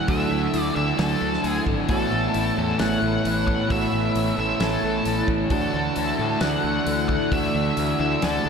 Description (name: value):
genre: rock, shoegaze and dream pop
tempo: 133 BPM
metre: 4/4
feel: straight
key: unclear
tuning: A4 = 440 Hz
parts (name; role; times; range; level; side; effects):
- octave-fuzz lead guitar; melody; 0.0-8.5 s; A4 to F#5; -27 LUFS; left 1 dB; distortion, ping-pong delay
- deep dark ambient pad; sustained chords; 0.0-8.5 s; C#5 to F#6; -32 LUFS; equal; chorus, built-in reverb
- fingerpicked twelve-string acoustic guitar; arpeggios; 0.0-8.5 s; E4 to A4; -30 LUFS; left 2 dB; lush chorus, ping-pong delay
- mellow electric guitar; riff; 0.0-8.5 s; D3 to D5; -27 LUFS; right 9 dB; reverse reverb
- thick fuzz guitar; riff; 0.0-8.5 s; A2 to D4; -27 LUFS; left 6 dB; distortion, wide subtle chorus
- fuzz fingered electric bass; bass; 0.1-8.5 s; G#1 to A2; -28 LUFS; equal; overdrive
- loose indie drum kit; drums; 0.1-8.3 s; hi-hat, kick drum, snare drum; -30 LUFS; equal; none
room: wet lush hall reverb, RT60 1.6 s, small room ambience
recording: dreamy mix soaked in reverb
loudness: -20 LUFS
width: side -6 dB against mid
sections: 0.0-8.5 A section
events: none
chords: 0.0 Dadd9; 1.9 Aadd9; 5.5 Dadd9